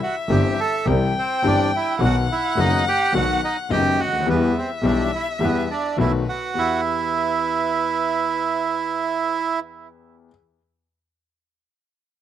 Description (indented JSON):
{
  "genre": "tango",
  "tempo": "106 BPM",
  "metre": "4/4",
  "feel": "rubato",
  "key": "E minor",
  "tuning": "A4 = 440 Hz",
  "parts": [
    { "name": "bandoneon", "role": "melody", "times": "0.0-9.6 s", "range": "B3 to A4", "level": "-22 LUFS", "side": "right 5 dB", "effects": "none" },
    { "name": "warm violin", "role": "second line", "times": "0.0-9.6 s", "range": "B4 to G5", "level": "-27 LUFS", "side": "left 4 dB", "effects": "slapback echo" },
    { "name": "warm concert grand piano", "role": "accompaniment", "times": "0.3-10.3 s", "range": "F#1 to G4", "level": "-24 LUFS", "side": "left 6 dB", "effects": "none" },
    { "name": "clear double bass", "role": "bass", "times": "0.3-6.8 s", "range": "F#1 to E2", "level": "-23 LUFS", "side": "right 1 dB", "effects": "none" }
  ],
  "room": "little or no reverb",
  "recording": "recorded outdoors, with no room sound",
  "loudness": "-18 LUFS",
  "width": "side -10 dB against mid",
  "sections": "0.0-6.6 A section; 6.6-8.8 B section",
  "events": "none",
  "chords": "0.0 C; 2.0 B; 4.3 Em; 6.0 B7; 6.6 Em",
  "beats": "0.30 0.87 1.44 | 2.01 2.57 3.14 3.71 | 4.27 4.84 5.41 5.98 | 6.55 7.12 7.69 8.25"
}